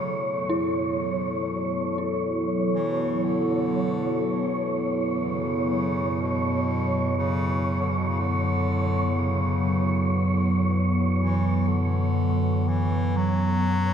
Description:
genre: dark ambient drone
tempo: 60 BPM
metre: 4/4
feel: straight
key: F# minor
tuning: A4 = 440 Hz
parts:
  - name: clear bass clarinet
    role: melody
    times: 0.0-13.9 s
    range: B2 to F#3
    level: -32 LUFS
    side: left 2 dB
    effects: ping-pong delay
  - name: dark analog pad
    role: sustained chords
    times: 0.0-13.9 s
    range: F#3 to C#5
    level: -27 LUFS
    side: equal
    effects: chorus, phaser
  - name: dark detuned synth bell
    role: arpeggios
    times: 0.0-13.9 s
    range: E4 to F#4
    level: -32 LUFS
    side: equal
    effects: chorus, ping-pong delay
  - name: deep rumbling drone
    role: drone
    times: 4.1-13.9 s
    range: F#2 to F#3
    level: -26 LUFS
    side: right 1 dB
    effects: built-in reverb
  - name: wind-like tuned noise texture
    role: texture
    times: 0.0-13.9 s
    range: C#5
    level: -30 LUFS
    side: right 1 dB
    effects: built-in reverb
room: wet cathedral reverb, RT60 5.6 s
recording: none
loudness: -22 LUFS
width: side -8 dB against mid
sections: 0.0-13.9 A section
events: fade-in on bass clarinet 0.0-13.9; fade-out on synth texture 0.0-13.9; fade-out on synth bell 0.0-13.9; filter sweep on synth drone 0.0-13.9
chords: 0.0 F#m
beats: 0.28 1.27 2.26 | 3.24 4.23 5.21 6.19 | 7.18 8.18 9.18 10.18 | 11.19 12.19 13.19

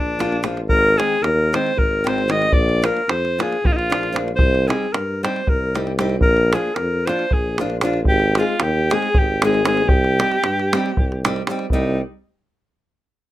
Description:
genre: balkan folk, Balkan wedding band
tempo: 228 BPM (eighths)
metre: 7/8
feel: straight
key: C minor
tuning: A4 = 440 Hz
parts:
  - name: clear alto saxophone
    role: melody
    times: 0.0-12.0 s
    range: D4 to Eb5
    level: -20 LUFS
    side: left 1 dB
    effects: none
  - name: mellow tuba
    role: bass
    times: 0.0-12.0 s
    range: Ab1 to G2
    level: -22 LUFS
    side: equal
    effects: none
  - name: nylon-string guitar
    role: accompaniment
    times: 0.2-12.0 s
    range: Eb3 to Ab4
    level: -24 LUFS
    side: equal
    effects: none
  - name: davul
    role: percussion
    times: 0.2-12.0 s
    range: none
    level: -20 LUFS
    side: right 1 dB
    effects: none
room: moderate small room ambience, RT60 0.5 s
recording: rough home demo mix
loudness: -16 LUFS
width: side -14 dB against mid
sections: 0.0-11.7 A section; 11.7-13.3 B section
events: none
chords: 0.0 Bb; 0.7 Ab; 2.5 Bb; 4.4 Cm; 6.2 Bb; 8.1 Ab; 9.9 Cm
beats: 0.13 0.40 | 0.66 0.93 1.19 1.46 1.72 1.99 2.25 | 2.52 2.78 3.05 3.31 3.58 3.84 4.11 | 4.37 4.63 4.90 5.16 5.42 5.69 5.95 | 6.21 6.48 6.74 7.00 7.27 7.53 7.79 | 8.05 8.32 8.58 8.84 9.10 9.36 9.62 | 9.89 10.15 10.41 10.67 10.93 11.19 11.45 | 11.71 11.97

